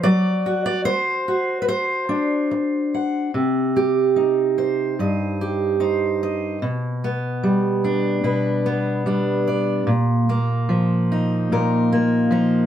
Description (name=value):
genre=folk, solo fingerstyle acoustic guitar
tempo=73 BPM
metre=4/4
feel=straight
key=unclear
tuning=A4 = 441 Hz
part: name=fingerpicked steel-string acoustic guitar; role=solo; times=0.0-12.7 s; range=G2 to F#5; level=-18 LUFS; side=right 1 dB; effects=none
room=light reverb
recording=none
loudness=-18 LUFS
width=side -10 dB against mid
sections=0.0-3.4 A section; 3.4-12.7 B section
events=none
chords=0.0 D7/F#; 3.4 Cm; 6.6 G/B; 9.9 Bbsus4